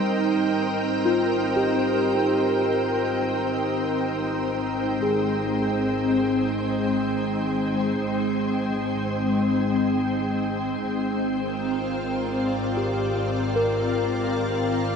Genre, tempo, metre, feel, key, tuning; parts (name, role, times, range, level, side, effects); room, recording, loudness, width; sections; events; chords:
ambient; free time; Ab lydian; A4 = 441 Hz
soft additive organ-like pad; sustained chords; 0.0-15.0 s; Ab3 to G5; -23 LUFS; equal; ensemble chorus, built-in reverb
muted felt-like synth keys; arpeggios; 0.0-15.0 s; G3 to Bb4; -28 LUFS; equal; chorus, ping-pong delay
dark chamber double bass section; bass; 0.0-15.0 s; Ab1; -34 LUFS; equal; tube saturation
wet shimmer reverb, RT60 7.1 s; dark, warm production, nothing above 10.3 kHz; -22 LUFS; side -6 dB against mid
0.0-15.0 A section
fade-in on double bass section 0.0-15.0
0.0 Abmaj7; 10.9 Bb/Ab